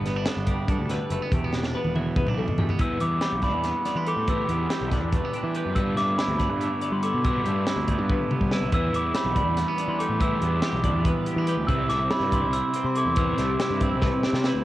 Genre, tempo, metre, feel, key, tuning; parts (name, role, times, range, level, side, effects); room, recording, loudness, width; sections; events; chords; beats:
math rock and midwest emo; 283 BPM (eighths); 7/8; straight; E minor; A4 = 440 Hz
twangy electric guitar; accompaniment; 0.0-14.6 s; E2 to G4; -32 LUFS; right 4 dB; cassette tape, plate reverb
twelve-string electric guitar; arpeggios; 0.0-14.6 s; G4 to F#5; -34 LUFS; left 5 dB; cassette tape, plate reverb, analog delay
fuzz picked electric bass; bass; 0.0-14.6 s; E1 to G3; -28 LUFS; equal; overdrive
crisp fusion drum kit; drums; 0.1-14.5 s; hi-hat, kick drum, snare drum, toms; -28 LUFS; equal; cassette tape
glockenspiel with soft plastic mallets; melody; 2.8-14.4 s; B5 to E6; -28 LUFS; equal; cassette tape, plate reverb
crunchy overdriven guitar; riff; 2.8-14.6 s; G2 to E4; -31 LUFS; equal; cassette tape
moderate booth ambience, RT60 0.2 s; home recording on cassette; -22 LUFS; side -15 dB against mid
0.0-2.8 A section; 2.8-14.6 B section
drum fill 1.5-2.8, 8.1-8.7, 14.0-14.6
0.0 G; 1.3 Em7; 5.8 G69; 8.7 Em7; 11.7 Cmaj7
0.05 0.26 0.47 0.69 0.90 1.11 | 1.32 1.53 1.74 1.95 2.17 2.38 2.59 | 2.80 3.01 3.22 3.44 3.65 3.86 4.07 | 4.28 4.50 4.71 4.92 5.13 5.34 5.56 | 5.77 5.98 6.19 6.40 6.62 6.83 7.04 | 7.25 7.46 7.67 7.89 8.10 8.31 8.52 | 8.73 8.94 9.16 9.37 9.58 9.79 10.00 | 10.21 10.43 10.64 10.85 11.06 11.27 11.49 | 11.70 11.91 12.12 12.33 12.54 12.76 12.97 | 13.18 13.39 13.61 13.82 14.03 14.24 14.45